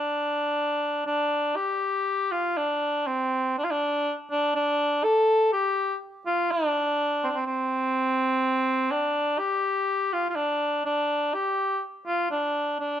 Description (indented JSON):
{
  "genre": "chinese traditional",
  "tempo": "62 BPM",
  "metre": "4/4",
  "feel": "rubato",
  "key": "D yu mode",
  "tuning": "A4 = 440 Hz",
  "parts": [
    { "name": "warm cor anglais", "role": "solo", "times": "0.0-13.0 s", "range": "C4 to A4", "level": "-23 LUFS", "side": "equal", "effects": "none" }
  ],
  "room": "moderate spring reverb, RT60 1.2 s",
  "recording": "none",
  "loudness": "-23 LUFS",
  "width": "side -10 dB against mid",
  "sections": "0.0-1.6 A section; 1.6-13.0 B section",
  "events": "none",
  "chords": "none"
}